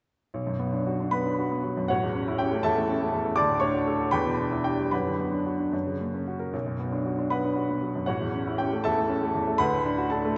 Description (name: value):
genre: classical, virtuoso piano study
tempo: 74-83 BPM (dotted quarters)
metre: 6/8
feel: rubato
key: B minor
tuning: A4 = 440 Hz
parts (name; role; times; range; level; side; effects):
- clear baby grand piano; solo; 0.3-10.4 s; A1 to D6; -27 LUFS; equal; none
room: wet concert hall reverb, RT60 2.4 s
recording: nothing above 8.0 kHz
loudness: -27 LUFS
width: mono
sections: 0.3-10.4 A section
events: none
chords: 0.3 Bm; 1.9 A; 3.4 D; 4.1 Em7; 4.9 Bm/F#; 5.7 F#; 6.5 Bm; 8.1 A; 9.6 D